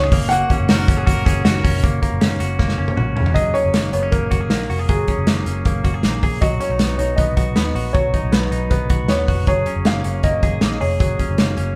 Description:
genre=jangly indie pop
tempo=157 BPM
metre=4/4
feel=straight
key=F# major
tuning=A4 = 440 Hz
part: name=dark upright piano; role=melody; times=0.0-11.3 s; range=G#4 to F#5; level=-25 LUFS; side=equal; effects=none
part: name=direct-recorded clean electric guitar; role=arpeggios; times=0.0-11.8 s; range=D#3 to G#4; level=-27 LUFS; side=equal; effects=none
part: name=vintage muted picked electric bass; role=bass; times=0.0-11.7 s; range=E#1 to D#2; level=-25 LUFS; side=equal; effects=none
part: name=loose indie drum kit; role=drums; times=0.1-11.7 s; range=hi-hat, kick drum, snare drum, toms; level=-21 LUFS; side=equal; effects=none
part: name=bright trumpet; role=second line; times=0.7-1.8 s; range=F#4 to A#4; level=-31 LUFS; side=equal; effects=none
room=moderate large studio reverb, RT60 1.3 s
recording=band playing live in one room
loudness=-18 LUFS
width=mono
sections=0.0-1.8 A section; 1.8-3.4 B section; 3.4-11.8 C section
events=drum fill 2.6-3.4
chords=0.1 F#; 3.4 F#add9; 6.4 B; 9.5 F#add9

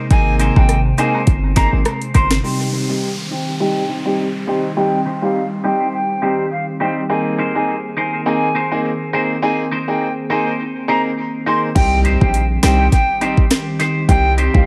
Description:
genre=dancehall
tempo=103 BPM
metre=4/4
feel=swing 56% on 16ths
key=C minor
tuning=A4 = 441 Hz
part: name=glassy FM pad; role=sustained chords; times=0.0-14.7 s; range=C3 to Ab4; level=-27 LUFS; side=equal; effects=ensemble chorus, built-in reverb, sidechain pumping, low-pass filter
part: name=semi-hollow electric guitar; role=arpeggios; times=0.0-14.6 s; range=Eb4 to C5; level=-27 LUFS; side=equal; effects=lush chorus, low-pass filter, tape echo
part: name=silver concert flute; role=melody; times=0.1-14.7 s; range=F5 to C6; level=-24 LUFS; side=equal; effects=low-pass filter, tape echo
part: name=bright baby grand piano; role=accompaniment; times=0.1-14.7 s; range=G3 to Ab4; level=-23 LUFS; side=equal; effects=sidechain pumping, low-pass filter
part: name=hard-hitting 808-style bass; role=bass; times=0.1-2.4, 11.8-14.7 s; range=G1 to C2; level=-19 LUFS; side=equal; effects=none
part: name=island pop drum kit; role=drums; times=0.1-2.4, 11.8-14.7 s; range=crash cymbal, hi-hat, kick drum, rim click, snare drum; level=-18 LUFS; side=equal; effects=overdrive
part: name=cabasa and woodblock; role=percussion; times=0.4-2.3 s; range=none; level=-35 LUFS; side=equal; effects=none
part: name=downlifter and impact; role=sound effects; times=2.4-7.1, 12.1-14.1 s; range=none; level=-32 LUFS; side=equal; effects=none
room=light reverb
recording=echo-heavy mix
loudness=-17 LUFS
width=mono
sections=0.0-2.4 A section; 2.4-11.8 B section; 11.8-14.7 C section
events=filter sweep 2.4-11.8; impact 11.8-14.1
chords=0.0 Abadd9; 2.4 Cm; 7.1 Abadd9; 11.8 Cm

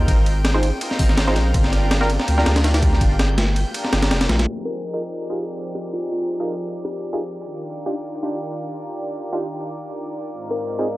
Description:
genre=drum and bass, jungle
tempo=164 BPM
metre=4/4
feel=swing 54% on 16ths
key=unclear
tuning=A4 = 440 Hz
part: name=lush unison pad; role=sustained chords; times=0.0-11.0 s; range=Ab2 to Bb4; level=-29 LUFS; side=equal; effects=chorus
part: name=saturated sub bass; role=bass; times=0.0-4.5 s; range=F1 to D2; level=-19 LUFS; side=equal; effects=none
part: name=drifting glass-harmonics texture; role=texture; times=0.0-11.0 s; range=D5 to G6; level=-36 LUFS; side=right 1 dB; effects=chorus, built-in reverb
part: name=breakbeat sampler-style drum kit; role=drums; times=0.1-4.5 s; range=hi-hat, kick drum, ride cymbal, snare drum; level=-20 LUFS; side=equal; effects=none
part: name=band-passed chord stab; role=stabs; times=0.5-2.5, 4.9-10.9 s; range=C4 to C5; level=-26 LUFS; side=right 1 dB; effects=chorus, vintage 12-bit sampler grit, dub echo
part: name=kalimba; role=melody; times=4.7-7.1, 10.5-10.9 s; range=F4 to Bb4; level=-28 LUFS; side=left 2 dB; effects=dub echo
room=little or no reverb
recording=dry, gritty hardware recording, vinyl crackle, low-pass filter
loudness=-19 LUFS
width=side -18 dB against mid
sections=0.0-4.5 A section; 4.5-11.0 B section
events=filter sweep 4.5-11.0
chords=0.0 Ab6; 1.5 Gm7; 4.5 Fm11; 7.4 Ebmaj9; 10.3 Ab6

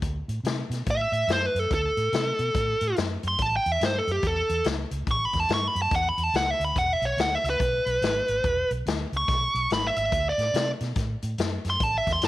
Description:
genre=electric blues shuffle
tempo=143 BPM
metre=4/4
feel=swing 63% on 8ths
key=unclear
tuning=A4 = 441 Hz
part: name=vintage muted fingered electric bass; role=bass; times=0.0-12.3 s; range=E1 to C3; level=-30 LUFS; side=right 1 dB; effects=none
part: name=swinging big-band drum kit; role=drums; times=0.0-12.3 s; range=hi-hat, kick drum, snare drum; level=-30 LUFS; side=left 3 dB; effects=none
part: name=smooth overdriven lead guitar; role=melody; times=0.9-12.3 s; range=G4 to C#6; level=-24 LUFS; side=right 1 dB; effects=none
room=light reverb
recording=1960s-style stereo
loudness=-23 LUFS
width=side -15 dB against mid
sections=0.0-12.3 A section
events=lead electric guitar solo 0.0-12.3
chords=0.0 D7; 3.4 A7; 6.8 E7; 10.1 D7

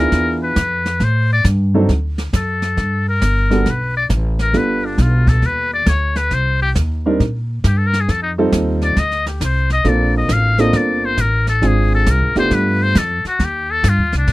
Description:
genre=jazz, small-group swing and bop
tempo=136 BPM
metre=4/4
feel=swing 66% on 8ths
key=unclear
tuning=A4 = 440 Hz
part: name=trumpet with metal mute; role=melody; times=0.0-14.3 s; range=D4 to F5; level=-19 LUFS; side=left 3 dB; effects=none
part: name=warm baby grand piano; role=accompaniment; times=0.0-12.9 s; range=F#3 to Bb4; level=-18 LUFS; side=right 2 dB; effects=none
part: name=upright bass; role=bass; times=0.0-14.3 s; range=F1 to Bb2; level=-17 LUFS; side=equal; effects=none
part: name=jazz brush drum kit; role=drums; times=0.1-14.3 s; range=brushed snare drum, hi-hat, kick drum, snare drum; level=-20 LUFS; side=equal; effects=none
room=little or no reverb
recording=dry, close 1970s-style studio recording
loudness=-14 LUFS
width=side -18 dB against mid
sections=0.0-2.8 A section; 2.8-14.3 A section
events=muted trumpet solo 0.0-14.3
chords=0.1 E7b9; 1.0 Am7; 1.9 D; 2.8 G; 4.5 G7; 6.3 Cm7; 8.1 F7; 9.9 Bbmaj7; 11.6 Dm7b5; 12.5 G7; 13.4 Cm

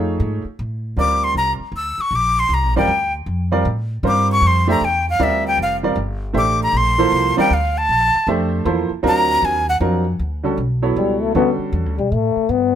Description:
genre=modal jazz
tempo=156 BPM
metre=3/4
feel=swing 66% on 8ths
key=Bb lydian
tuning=A4 = 444 Hz
part: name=clear baby grand piano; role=accompaniment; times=0.0-11.9 s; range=D3 to E5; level=-20 LUFS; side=right 3 dB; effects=none
part: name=upright bass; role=bass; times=0.0-12.8 s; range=F1 to A2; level=-21 LUFS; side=equal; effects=none
part: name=breathy bright jazz flute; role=melody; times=1.0-9.8 s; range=E5 to E6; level=-17 LUFS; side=left 1 dB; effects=plate reverb
part: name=growling trombone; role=second line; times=11.0-12.8 s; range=G3 to B3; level=-17 LUFS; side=left 8 dB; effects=none
room=light reverb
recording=none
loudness=-16 LUFS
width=side -9 dB against mid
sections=1.0-10.2 A section; 10.2-12.8 A section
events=flute solo 0.0-10.2; trombone solo 10.2-12.8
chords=0.0 F7alt; 1.0 Bb69; 9.0 D7alt; 10.2 G69

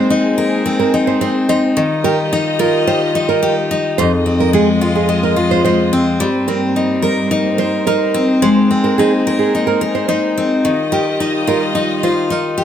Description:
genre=acoustic pop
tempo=108 BPM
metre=4/4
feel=straight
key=Ab major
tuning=A4 = 440 Hz
part: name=picked steel-string acoustic guitar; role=accompaniment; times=0.0-12.6 s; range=F2 to Bb4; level=-14 LUFS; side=left 2 dB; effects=none
part: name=warm studio string section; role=sustained chords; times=0.0-12.6 s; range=G2 to Eb5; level=-23 LUFS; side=equal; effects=none
part: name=nylon-string guitar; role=arpeggios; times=0.0-12.6 s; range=Ab4 to C5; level=-19 LUFS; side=right 8 dB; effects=none
room=light reverb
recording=close, detailed microphones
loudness=-13 LUFS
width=side -9 dB against mid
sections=0.0-4.0 A section; 4.0-12.6 B section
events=none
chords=0.0 Abadd9; 1.8 Ebadd9; 4.0 Fm7; 6.2 Cm7/G; 8.4 Abadd9; 10.6 Ebadd9

